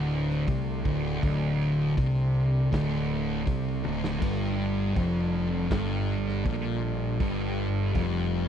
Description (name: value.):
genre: stoner and doom metal.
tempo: 80 BPM.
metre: 4/4.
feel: straight.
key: D minor.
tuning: A4 = 440 Hz.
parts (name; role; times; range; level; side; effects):
metallic inharmonic drone; sustained chords; 0.0-8.5 s; D3 to A4; -38 LUFS; equal; chorus, built-in reverb.
thick fuzz guitar; riff; 0.0-8.5 s; D2 to C3; -29 LUFS; left 7 dB; distortion.
thick fuzz guitar; riff; 0.0-8.5 s; D2 to C3; -29 LUFS; right 7 dB; distortion.
fuzz fingered electric bass; bass; 0.0-8.5 s; D1 to C2; -33 LUFS; equal; overdrive.
raw garage drum kit; drums; 0.3-8.1 s; crash cymbal, hi-hat, kick drum, snare drum, toms; -32 LUFS; equal; none.
room: little or no reverb.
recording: dry, close 1970s-style studio recording.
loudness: -25 LUFS.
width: side -8 dB against mid.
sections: 0.0-8.5 A section.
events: drum fill 3.8-4.2.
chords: 0.0 D5; 4.2 G5.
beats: 0.48 | 1.23 1.98 2.73 3.47 | 4.22 4.97 5.72 6.46 | 7.21 7.95.